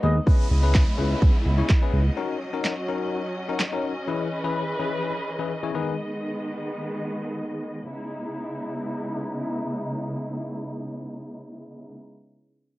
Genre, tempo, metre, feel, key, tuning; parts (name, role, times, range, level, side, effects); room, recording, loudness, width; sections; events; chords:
dance-pop; 126 BPM; 4/4; straight; C# minor; A4 = 440 Hz
bell-like tine electric piano; accompaniment; 0.0-5.9 s; D#3 to C#5; -28 LUFS; left 6 dB; sidechain pumping, low-pass filter, cassette tape
warm studio string section; sustained chords; 0.0-11.9 s; C#3 to D#5; -30 LUFS; equal; sidechain pumping, low-pass filter, cassette tape
chorused synth bass; bass; 0.0-2.1 s; C#2 to D#2; -21 LUFS; equal; sidechain pumping
house drum kit; drums; 0.3-3.7 s; handclaps, kick drum, snare drum; -20 LUFS; equal; cassette tape
downlifter; sound effects; 0.3-4.1 s; -40 LUFS; right 1 dB
light reverb; home recording on cassette; -23 LUFS; side -17 dB against mid
0.3-7.9 A section; 7.9-11.7 B section
break 0.0
0.3 C#m7; 2.2 D#m7; 4.1 C#m7/E; 5.7 G#m/D#; 7.9 C#m7